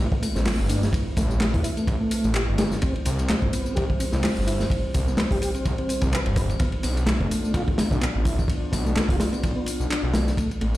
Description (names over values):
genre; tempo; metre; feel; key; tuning
breakbeat, breaks; 127 BPM; 4/4; swing 56% on 16ths; unclear; A4 = 444 Hz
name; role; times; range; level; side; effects
dark analog pad; sustained chords; 0.0-10.8 s; G3 to D5; -31 LUFS; equal; chorus, sidechain pumping
mellow tonewheel organ; riff; 0.0-10.7 s; G3 to B4; -30 LUFS; equal; chorus vibrato, ping-pong delay
detuned saw bass; bass; 0.0-10.8 s; F1 to E2; -25 LUFS; equal; none
crunchy breakbeat drum kit; drums; 0.1-10.8 s; hi-hat, kick drum, ride cymbal, snare drum; -25 LUFS; equal; none
punchy analog drum machine; drums; 0.2-10.8 s; handclaps, hi-hat, tambourine; -32 LUFS; equal; none
room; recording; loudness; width
light reverb, small room ambience; played on a big sound system in a bare room, large studio reverb; -21 LUFS; side -16 dB against mid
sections
0.0-10.4 A section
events
drop 0.0-10.4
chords
0.0 Amadd9; 2.8 C; 6.6 Bdim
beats
0.46 | 0.93 1.40 1.88 2.35 | 2.82 3.29 3.77 4.24 | 4.71 5.18 5.66 6.13 | 6.60 7.07 7.54 8.02 | 8.49 8.96 9.43 9.91 | 10.38